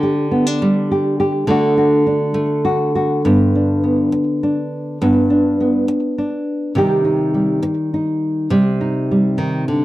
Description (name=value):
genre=folk, solo fingerstyle acoustic guitar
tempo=68 BPM (dotted quarters)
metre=6/8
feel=straight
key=G major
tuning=A4 = 440 Hz
part: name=nylon-string guitar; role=solo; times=0.0-9.8 s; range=G2 to G4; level=-14 LUFS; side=equal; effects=slapback echo
room=light reverb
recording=dry, close 1970s-style studio recording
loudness=-14 LUFS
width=side -16 dB against mid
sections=0.0-3.2 A section; 3.2-9.8 B section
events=none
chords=0.0 G5/D; 1.5 D; 3.2 G; 6.8 Cm